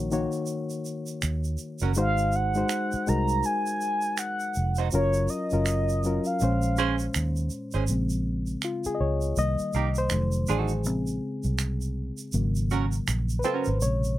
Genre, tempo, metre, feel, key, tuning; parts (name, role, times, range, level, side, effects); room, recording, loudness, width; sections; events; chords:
R&B, neo-soul; 81 BPM; 4/4; swing 59% on 16ths; Bb minor; A4 = 438 Hz
reed electric piano; accompaniment; 0.0-14.2 s; Bb2 to Eb5; -29 LUFS; left 2 dB
vintage muted fingered electric bass; bass; 0.0-14.2 s; F1 to Eb2; -27 LUFS; equal
tube shaker and finger snaps; percussion; 0.1-14.2 s; -36 LUFS; right 6 dB
archtop guitar, miked and amplified; second line; 1.8-13.7 s; Bb3 to C5; -29 LUFS; right 9 dB; wah, slapback echo
mellow horn-like synth lead; melody; 2.0-7.5 s; Db5 to Bb5; -28 LUFS; right 1 dB; chorus
light reverb; -24 LUFS; side -14 dB against mid
0.0-7.9 A section; 7.9-14.2 B section
reed electric piano solo 7.9-14.2
0.0 Ebm7; 2.0 Ab7; 4.9 Gbmaj7; 6.4 Bbm9; 9.4 Cm7; 10.1 F7b9; 10.8 Bbm9; 12.3 Ab9sus4